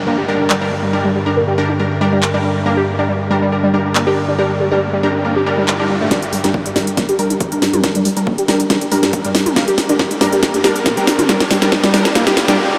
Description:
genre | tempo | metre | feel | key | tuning
driving peak-time techno | 139 BPM | 4/4 | straight | G minor | A4 = 440 Hz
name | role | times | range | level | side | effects
metallic inharmonic drone | drone | 0.0-6.2 s | G2 to D3 | -26 LUFS | equal | chorus, built-in reverb, sidechain pumping
downlifter and riser | sound effects | 0.0-12.8 s | none | -29 LUFS | equal | none
overdriven synth lead | riff | 0.1-12.5 s | G3 to G4 | -20 LUFS | equal | phaser, sidechain pumping, tape echo
rave stab | stabs | 0.1-12.6 s | G3 to Bb4 | -21 LUFS | equal | chorus, built-in reverb, sidechain pumping, tape echo
techno drum kit | drums | 0.5-12.6 s | handclaps, hi-hat, snare drum, toms | -21 LUFS | equal | none
electronic kick drum | drums | 6.1-12.2 s | none | -26 LUFS | equal | high-pass filter on kick, high-pass filter on room
room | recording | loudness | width
wet huge ambient reverb, RT60 7.4 s | dreamy mix soaked in reverb | -15 LUFS | mono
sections
0.0-6.1 A section; 6.1-12.8 B section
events
riser 4.6-6.1; build-up 6.1-12.8; drum fill 6.1-12.6; filter sweep on analog synth lead 6.1-12.8; filter sweep on synth stab 6.1-12.8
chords
0.0 Gm

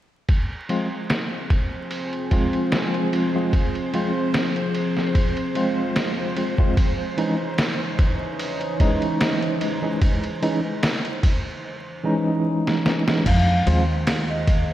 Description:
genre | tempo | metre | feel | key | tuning
trip hop | 74 BPM | 4/4 | swing 54% on 16ths | F minor | A4 = 443 Hz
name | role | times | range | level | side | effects
deep dark ambient pad | sustained chords | 1.1-11.6 s | Fb3 to Ab4 | -28 LUFS | equal | chorus, built-in reverb
trip hop sampler-style drum kit | drums | 0.3-14.7 s | crash cymbal, kick drum, ride cymbal, snare drum | -23 LUFS | equal | overdrive, low-pass filter on cymbals, vintage 12-bit sampler grit, small room ambience, low-pass filter on kick, low-pass filter on snare
bowed-like drone | texture | 1.3-14.7 s | Ab3 to C5 | -34 LUFS | right 2 dB | built-in reverb
tine electric piano | accompaniment | 0.7-13.8 s | Fb3 to F4 | -24 LUFS | equal | medium stereo tremolo, tape echo
mellow hollow jazz flute | melody | 13.3-14.7 s | C5 to F5 | -26 LUFS | equal | tape echo
upright bass | bass | 13.3-14.7 s | Eb2 to F2 | -21 LUFS | equal | none
room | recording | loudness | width
wet lush hall reverb, RT60 2.6 s | dreamy mix soaked in reverb, vinyl crackle | -20 LUFS | side -13 dB against mid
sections
0.3-13.3 A section; 13.3-14.7 B section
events
drum fill 12.7-13.3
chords
0.3 Fm; 6.8 Dbmadd9; 13.3 Fm

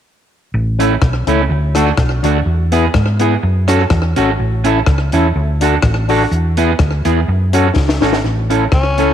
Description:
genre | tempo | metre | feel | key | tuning
ska | 125 BPM | 4/4 | straight | A major | A4 = 440 Hz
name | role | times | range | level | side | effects
hollow-body short-scale fingered electric bass | bass | 0.5-9.1 s | G#1 to G#2 | -15 LUFS | equal | none
electric guitar at the edge of break-up | accompaniment | 0.8-9.1 s | A3 to A4 | -18 LUFS | right 9 dB | tube saturation
tonewheel organ | stabs | 0.8-9.1 s | B3 to A4 | -19 LUFS | left 9 dB | overdrive, chorus vibrato, slow rotary speaker
compact cocktail drum kit | drums | 0.8-9.1 s | hi-hat, kick drum, rim click, snare drum | -17 LUFS | left 2 dB | slapback echo
breathy tenor saxophone | melody | 8.7-9.1 s | C#4 | -16 LUFS | left 4 dB | none
room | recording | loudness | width
light reverb | 1960s-style stereo with parts hard left and right | -12 LUFS | side -9 dB against mid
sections
0.5-8.2 A section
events
drum fill 7.8-8.2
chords
0.5 A; 1.5 D; 2.5 E; 3.4 F#m; 4.4 A; 5.4 D; 6.3 E; 7.3 F#m; 8.2 A

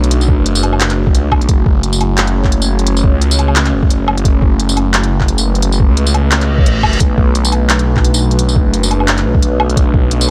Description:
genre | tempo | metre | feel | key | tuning
half-time drum and bass | 174 BPM | 4/4 | swing 56% on 16ths, half-time | B minor | A4 = 440 Hz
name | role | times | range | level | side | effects
dark analog pad | sustained chords | 0.0-10.3 s | A3 to C#5 | -21 LUFS | equal | chorus, sidechain pumping
phased detuned saw bass | bass | 0.0-10.3 s | F#1 to C#2 | -16 LUFS | equal | phaser
organic electronic drum kit | drums | 0.0-10.3 s | handclaps, hi-hat, tambourine, woodblock | -19 LUFS | equal | none
electronic kick drum | drums | 0.3-10.0 s | none | -14 LUFS | equal | overdrive
reverse cymbal | sound effects | 6.5-7.0 s | none | -24 LUFS | equal | none
room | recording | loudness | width
little or no reverb | none | -13 LUFS | mono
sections
0.0-10.3 A section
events
reverse cymbal 6.5-7.0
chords
0.0 Bm7; 1.5 F#m; 7.0 Bm7

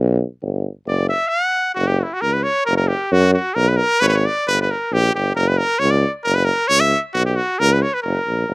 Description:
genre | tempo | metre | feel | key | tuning
balkan folk | 134 BPM | 2/4 | swing 53% on 16ths | F# phrygian dominant | A4 = 440 Hz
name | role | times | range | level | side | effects
warm tuba | bass | 0.0-8.5 s | F#1 to F#2 | -18 LUFS | equal | none
bright trumpet | melody | 0.9-8.5 s | E4 to F#5 | -17 LUFS | equal | none
room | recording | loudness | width
little or no reverb | recorded outdoors, with no room sound | -16 LUFS | side -28 dB against mid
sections
0.0-1.8 A section; 1.8-8.5 B section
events
trumpet solo 0.0-1.8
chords
0.0 G; 0.9 Dadd9/F#; 1.8 F#5; 3.5 G#madd9; 4.4 Gm; 5.3 F#5; 7.1 Bsus2; 8.0 F#

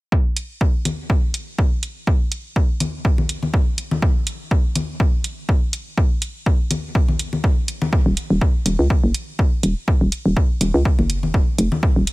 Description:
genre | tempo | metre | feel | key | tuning
minimal techno | 123 BPM | 4/4 | swing 55% on 16ths | Eb minor | A4 = 440 Hz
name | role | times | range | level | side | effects
electronic kick drum | drums | 0.1-11.9 s | none | -17 LUFS | equal | none
electronic hi-hat | drums | 0.4-12.1 s | none | -29 LUFS | right 2 dB | none
congas | percussion | 0.9-11.8 s | none | -26 LUFS | left 2 dB | diffuse ambient delay
hollow knocking FM bass | bass | 8.1-12.1 s | Eb1 to Db2 | -17 LUFS | equal | sidechain pumping
room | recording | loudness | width
little or no reverb | none | -17 LUFS | side -21 dB against mid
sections
0.1-12.1 A section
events
none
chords
none

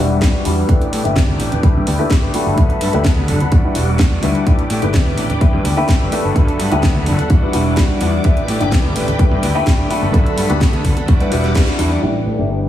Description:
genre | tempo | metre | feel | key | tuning
filtered disco house | 127 BPM | 4/4 | straight | unclear | A4 = 440 Hz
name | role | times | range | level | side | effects
dark baby grand piano | accompaniment | 0.0-12.7 s | G3 to B4 | -20 LUFS | left 3 dB | phaser, sidechain pumping, low-pass filter
phased string machine | sustained chords | 0.0-12.7 s | G3 to D6 | -26 LUFS | equal | ensemble chorus, phaser, sidechain pumping, low-pass filter
direct-recorded clean electric guitar | riff | 0.0-12.7 s | E3 to A4 | -25 LUFS | right 2 dB | sidechain pumping, low-pass filter
fuzz fingered electric bass | bass | 0.0-12.7 s | E1 to A2 | -19 LUFS | equal | overdrive, sidechain pumping, low-pass filter
maracas and congas | percussion | 0.1-12.0 s | none | -24 LUFS | right 3 dB | none
electronic kick drum | drums | 0.2-11.7 s | none | -14 LUFS | equal | small room reverb
house drum kit | drums | 0.2-11.9 s | hi-hat, snare drum | -24 LUFS | right 1 dB | sidechain pumping on hats, low-pass filter on hats, small room reverb, low-pass filter on snare
room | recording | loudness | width
light reverb, digital ambience | heavily compressed radio sound, multiband compression, small room ambience, faint mains hum | -13 LUFS | side -12 dB against mid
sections
0.0-12.0 A section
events
filter sweep 0.0-12.0; band accent 11.6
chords
0.0 Em9; 0.7 A9sus4; 2.3 Gmaj9; 3.5 Em9; 4.5 A9sus4; 6.1 Gmaj9; 7.3 Em9; 8.2 A9sus4; 9.9 Gmaj9; 11.1 Em9; 12.0 A9sus4

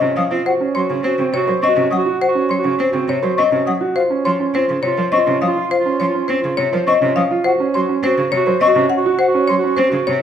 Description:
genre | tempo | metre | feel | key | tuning
classical, minimalist pattern music | 103 BPM | 3/4 | straight | unclear | A4 = 440 Hz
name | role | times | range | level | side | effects
marimba with hard mallets | melody | 0.0-10.2 s | C5 to Gb5 | -18 LUFS | left 6 dB | none
mellow clarinet | second line | 0.0-10.2 s | F4 to Gb4 | -22 LUFS | right 5 dB | none
clear cello | accompaniment | 0.0-10.2 s | C3 to C4 | -23 LUFS | right 2 dB | none
warm baby grand piano | arpeggios | 0.0-9.8 s | C4 to C5 | -21 LUFS | right 5 dB | none
silver concert flute | arpeggios | 0.2-9.5 s | F5 to Eb6 | -22 LUFS | left 1 dB | none
room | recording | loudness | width
moderate recital hall reverb, RT60 1.4 s | recorded in a church or concert hall | -14 LUFS | side -9 dB against mid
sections
0.0-10.2 A section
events
none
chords
0.5 Ebm7 (rootless); 4.0 Dbmaj7; 7.4 Ebm7 (rootless)

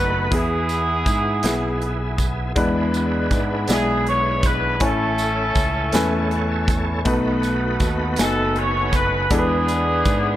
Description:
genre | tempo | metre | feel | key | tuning
slow gospel | 53 BPM (dotted quarters) | 6/8 | straight | unclear | A4 = 440 Hz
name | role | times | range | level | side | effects
clear horn section | melody | 0.0-10.4 s | B3 to C#5 | -22 LUFS | equal | tape echo
warm upright piano | accompaniment | 0.0-10.4 s | A2 to G#5 | -23 LUFS | left 2 dB | none
bright tonewheel organ | sustained chords | 0.0-10.4 s | G3 to F#5 | -28 LUFS | right 2 dB | fast rotary speaker, chorus vibrato
modern bright fingered electric bass | bass | 0.0-10.4 s | F#1 to G#2 | -25 LUFS | equal | none
modern studio drum kit | drums | 0.3-10.2 s | hi-hat, kick drum, snare drum | -23 LUFS | equal | none
tambourine | percussion | 0.7-10.4 s | none | -33 LUFS | right 5 dB | none
room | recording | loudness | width
light reverb, small room ambience | none | -18 LUFS | side -13 dB against mid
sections
0.0-10.4 A section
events
tonewheel organ fill 5.9-7.1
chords
0.3 E; 2.6 E7; 4.8 Amaj7; 7.1 B7; 9.3 E7

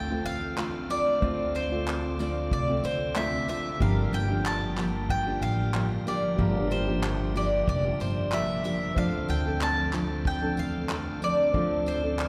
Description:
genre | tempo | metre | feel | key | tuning
acoustic pop | 93 BPM | 4/4 | swing 55% on 16ths | D minor | A4 = 440 Hz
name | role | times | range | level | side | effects
mandolin | melody | 0.0-12.3 s | C5 to A5 | -32 LUFS | equal | none
clear upright piano | accompaniment | 0.0-12.3 s | G3 to D5 | -45 LUFS | equal | none
fingerpicked steel-string acoustic guitar | accompaniment | 0.0-12.3 s | G2 to A4 | -33 LUFS | equal | none
tonewheel organ | sustained chords | 0.0-12.3 s | D3 to E5 | -42 LUFS | equal | overdrive, chorus vibrato
upright bass | bass | 0.0-12.3 s | F1 to E2 | -34 LUFS | equal | none
cloth-damped thuddy drum kit | drums | 0.3-12.3 s | handclaps, kick drum, tambourine | -37 LUFS | equal | none
room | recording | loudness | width
wet cathedral reverb, RT60 5.0 s | recorded in a church or concert hall | -27 LUFS | mono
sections
0.0-12.3 A section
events
none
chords
0.0 Dm7; 3.8 Gm7; 9.0 Dm7

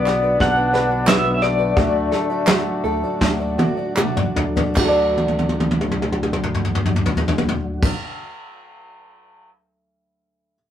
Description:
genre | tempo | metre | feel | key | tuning
indie folk with a building arrangement | 74-91 BPM | 4/4 | straight | D major | A4 = 441 Hz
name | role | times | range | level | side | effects
electric guitar through a small old amp | melody | 0.0-3.9 s | D5 to F#5 | -20 LUFS | left 3 dB | tremolo
mellow trumpet | second line | 0.0-3.9 s | A3 to D4 | -27 LUFS | left 3 dB | none
clear upright piano | accompaniment | 0.0-10.6 s | B1 to D5 | -32 LUFS | equal | none
picked twelve-string acoustic guitar | accompaniment | 0.0-8.3 s | B2 to D5 | -29 LUFS | left 3 dB | none
mellow tonewheel organ | sustained chords | 0.0-8.0 s | A2 to F#4 | -28 LUFS | equal | slow rotary speaker, chorus vibrato
tenor ukulele | arpeggios | 0.0-8.0 s | D4 to D5 | -24 LUFS | right 2 dB | none
fingered electric bass | bass | 0.0-8.0 s | B1 to D3 | -26 LUFS | equal | none
soft brush drum kit | drums | 0.1-9.5 s | crash cymbal, kick drum, snare drum, toms | -20 LUFS | equal | none
group handclap | percussion | 0.1-7.9 s | none | -26 LUFS | right 2 dB | none
room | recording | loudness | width
wet small room reverb, RT60 0.5 s | rough rehearsal-room recording | -17 LUFS | side -10 dB against mid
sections
0.0-4.8 A section; 4.8-8.0 B section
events
slowing down 0.0-4.8; drum fill 3.2-4.8, 5.2-7.8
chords
0.0 Bm; 1.8 D

